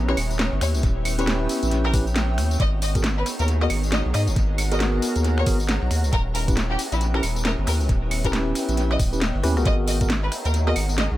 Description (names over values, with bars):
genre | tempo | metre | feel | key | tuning
UK garage, two-step garage | 136 BPM | 4/4 | swing 60% on 16ths | G# minor | A4 = 436 Hz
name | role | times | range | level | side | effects
soft string machine | sustained chords | 0.0-11.2 s | B3 to B4 | -34 LUFS | left 1 dB | phaser, ensemble chorus, vintage 12-bit sampler grit, sidechain pumping
saturated sub bass | bass | 0.0-11.2 s | D#1 to G#2 | -23 LUFS | equal | none
granular cloud pad | texture | 0.0-11.2 s | B3 to A#5 | -33 LUFS | equal | built-in reverb, sidechain pumping
rich studio violin section | melody | 0.1-11.1 s | E4 to D#5 | -30 LUFS | left 2 dB | analog delay
tine electric piano | stabs | 0.1-10.7 s | B3 to B4 | -27 LUFS | equal | fast stereo tremolo, analog delay
garage drum kit | drums | 0.1-11.1 s | claves, finger snaps, hi-hat, rim click, snare drum, tambourine | -27 LUFS | equal | small room ambience, tape echo
electronic kick drum | drums | 0.8-10.1 s | none | -22 LUFS | equal | small room ambience
room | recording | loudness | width
light reverb | echo-heavy mix | -20 LUFS | side -15 dB against mid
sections
0.0-11.2 A section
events
drum fill 9.4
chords
0.0 D#7b9b13; 2.6 G#m9; 5.9 D#7b9b13; 9.7 G#m9